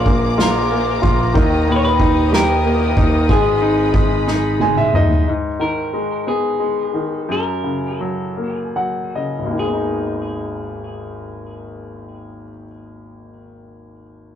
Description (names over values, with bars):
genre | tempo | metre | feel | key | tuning
six-eight pop ballad | 48-62 BPM (dotted quarters) | 6/8 | straight | G# minor | A4 = 440 Hz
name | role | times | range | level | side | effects
clean electric guitar | melody | 0.0-12.6 s | G#4 to C#5 | -23 LUFS | left 2 dB | digital delay
bright concert grand piano | accompaniment | 0.0-14.4 s | G#1 to G#5 | -20 LUFS | left 1 dB | none
warm studio string section | sustained chords | 0.0-5.2 s | G4 to D#6 | -24 LUFS | left 1 dB | none
fretless electric bass | bass | 0.0-5.2 s | G#1 to D#2 | -20 LUFS | right 1 dB | none
soft-mallet drum kit | drums | 0.1-5.2 s | kick drum, ride cymbal, snare drum, toms | -19 LUFS | equal | none
room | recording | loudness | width
wet booth ambience, RT60 0.2 s | rough rehearsal-room recording, warm saturation | -15 LUFS | side -9 dB against mid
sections
0.0-5.3 A section; 5.3-9.6 B section; 9.6-14.4 C section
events
drum fill 4.3-5.3; grand piano fill 4.3-5.3, 8.4-9.6; slowing down 5.3-9.6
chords
0.0 A#7; 1.4 D#; 3.3 G#m; 7.3 F#; 9.6 G#m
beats
0.39 | 1.35 2.33 | 3.29 4.28 | 5.26 6.26 | 7.28 8.37 | 9.57 10.82 | 12.06 13.31